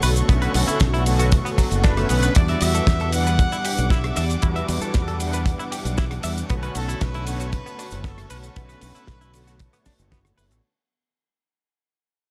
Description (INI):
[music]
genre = nu-disco, nu disco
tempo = 116 BPM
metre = 4/4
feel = straight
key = B minor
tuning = A4 = 440 Hz
[part]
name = mellow synth brass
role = accompaniment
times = 0.0-10.6 s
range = D3 to F#5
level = -30 LUFS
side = equal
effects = chorus, sidechain pumping, slapback echo
[part]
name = warm chamber string section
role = sustained chords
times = 0.0-10.6 s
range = G3 to D6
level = -36 LUFS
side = equal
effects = sidechain pumping
[part]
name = direct-recorded clean electric guitar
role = riff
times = 0.0-10.4 s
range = F#3 to E5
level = -32 LUFS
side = equal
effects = subtle chorus
[part]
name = fingered electric bass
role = bass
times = 0.0-10.6 s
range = F#1 to E2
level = -26 LUFS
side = equal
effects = tube saturation
[part]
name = damped 70s drum kit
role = drums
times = 0.0-10.6 s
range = cabasa, hi-hat, ride cymbal, rim click, snare drum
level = -32 LUFS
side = equal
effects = none
[part]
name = kick drum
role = drums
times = 0.3-10.2 s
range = none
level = -22 LUFS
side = equal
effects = none
[part]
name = clear trumpet section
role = melody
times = 1.8-10.1 s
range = A4 to F#5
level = -33 LUFS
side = equal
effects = tape echo
[sound]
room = studio reverb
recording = none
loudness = -21 LUFS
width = mono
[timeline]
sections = 0.0-10.6 A section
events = drop 0.0-10.6; fade-out 2.4-10.6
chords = 0.0 Bm9; 2.4 Em9; 6.5 Bm9